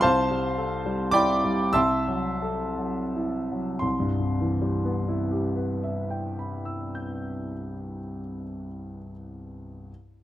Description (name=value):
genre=classical, impressionist solo piano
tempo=26-38 BPM (dotted quarters)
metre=6/8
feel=rubato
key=C major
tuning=A4 = 440 Hz
part: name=warm grand piano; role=solo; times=0.0-9.9 s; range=C2 to G6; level=-25 LUFS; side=equal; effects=none
room=light reverb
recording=close, detailed microphones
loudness=-24 LUFS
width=side -13 dB against mid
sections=0.0-3.8 A section; 3.8-7.7 B section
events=slowing down 0.0-3.8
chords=0.0 F69/C; 1.8 Am6/C; 3.8 Cmaj7